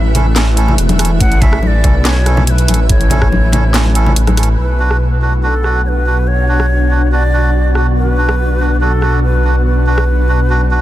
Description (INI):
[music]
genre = deep dubstep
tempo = 142 BPM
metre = 4/4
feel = half-time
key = B minor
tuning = A4 = 441 Hz
[part]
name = breathy bright ney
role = melody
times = 0.0-10.8 s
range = A4 to F#5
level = -22 LUFS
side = right 1 dB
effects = dub echo
[part]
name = granular cloud pad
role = sustained chords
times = 0.0-10.8 s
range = A3 to E5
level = -22 LUFS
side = left 1 dB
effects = built-in reverb
[part]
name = dark detuned saw bass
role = bass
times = 0.0-10.8 s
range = E1 to B1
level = -12 LUFS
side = equal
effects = tube saturation
[part]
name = wind-like tuned noise texture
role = texture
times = 0.0-10.8 s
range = F#4 to B4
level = -27 LUFS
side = equal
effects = built-in reverb
[part]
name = melodica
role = stabs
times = 0.1-10.8 s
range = C#4 to B4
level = -20 LUFS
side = right 3 dB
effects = vintage 12-bit sampler grit, dub echo
[part]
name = garage drum kit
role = drums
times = 0.1-10.1 s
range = handclaps, hi-hat, rim click, snare drum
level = -19 LUFS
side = equal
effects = low-pass filter on hats, soft clipping on snare, low-pass filter on snare
[part]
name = congas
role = percussion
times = 0.1-4.4 s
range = none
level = -20 LUFS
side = left 2 dB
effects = dub echo
[part]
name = electronic kick drum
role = drums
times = 1.2-3.3 s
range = none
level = -13 LUFS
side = equal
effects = overdrive
[sound]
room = little or no reverb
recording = dense, heavily limited modern master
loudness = -10 LUFS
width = side -14 dB against mid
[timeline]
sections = 0.0-4.6 A section; 4.6-10.8 B section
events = drop 0.0-4.6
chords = 0.0 A; 4.6 Bm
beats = 0.36 0.78 | 1.21 1.63 2.05 2.47 | 2.90 3.32 3.74 4.16 | 4.58 5.01 5.43 5.85 | 6.28 6.70 7.12 7.54 | 7.97 8.39 8.81 9.23 | 9.66 10.08 10.50